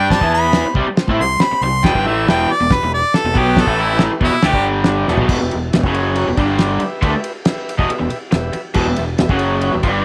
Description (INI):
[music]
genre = garage rock duo or trio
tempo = 139 BPM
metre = 4/4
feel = straight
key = E minor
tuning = A4 = 440 Hz
[part]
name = clear harmonica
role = melody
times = 0.0-4.7 s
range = E4 to C6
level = -19 LUFS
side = equal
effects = overdrive
[part]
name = raw garage guitar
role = riff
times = 0.0-10.0 s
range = E2 to G4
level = -20 LUFS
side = equal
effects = overdrive
[part]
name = growling fingered electric bass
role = bass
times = 0.0-10.0 s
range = E1 to A2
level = -25 LUFS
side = equal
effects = overdrive
[part]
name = overdriven combo organ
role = sustained chords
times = 0.1-10.0 s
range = B3 to G5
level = -29 LUFS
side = equal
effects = none
[part]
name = cloth-damped thuddy drum kit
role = drums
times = 0.1-9.9 s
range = crash cymbal, kick drum, ride cymbal, snare drum, toms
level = -21 LUFS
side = equal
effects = none
[sound]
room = light reverb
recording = none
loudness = -16 LUFS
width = mono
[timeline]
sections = 0.0-5.3 A section; 5.3-10.0 B section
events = harmonica solo 0.0-5.3; drum fill 5.1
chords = 0.2 E5; 0.6 C5; 1.8 Em; 3.7 A5; 4.1 Em; 4.5 G5; 5.1 Em; 5.8 F#5; 6.3 E5; 6.4 G5; 6.8 Em; 9.3 F#5; 9.7 E5